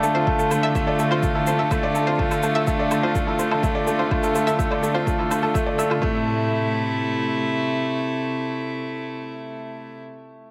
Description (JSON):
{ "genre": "piano and strings electronica", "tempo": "125 BPM", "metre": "4/4", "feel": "straight", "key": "A minor", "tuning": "A4 = 440 Hz", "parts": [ { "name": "dark string quartet", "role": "sustained chords", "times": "0.0-10.0 s", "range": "C3 to F4", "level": "-28 LUFS", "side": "equal", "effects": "none" }, { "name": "analog pluck", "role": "arpeggios", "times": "0.0-6.3 s", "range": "E4 to A5", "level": "-31 LUFS", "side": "equal", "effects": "chorus, sidechain pumping, delay" }, { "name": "bright upright piano", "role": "riff", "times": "0.0-10.5 s", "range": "A3 to D5", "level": "-27 LUFS", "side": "equal", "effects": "delay" }, { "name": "warm chamber cello section", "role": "bass", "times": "0.0-7.4 s", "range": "A2 to D3", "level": "-31 LUFS", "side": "equal", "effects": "tube saturation, sidechain pumping" }, { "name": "shaker and woodblock", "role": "drums", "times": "0.0-6.0 s", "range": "none", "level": "-36 LUFS", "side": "equal", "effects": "none" }, { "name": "electronic kick drum", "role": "drums", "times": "0.3-6.1 s", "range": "none", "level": "-28 LUFS", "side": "equal", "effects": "overdrive" } ], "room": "light reverb, small room ambience", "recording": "none", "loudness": "-22 LUFS", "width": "mono", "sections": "0.0-6.0 A section; 6.0-9.9 B section", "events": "drop 0.0-6.0", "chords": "0.0 Dm; 6.0 Am" }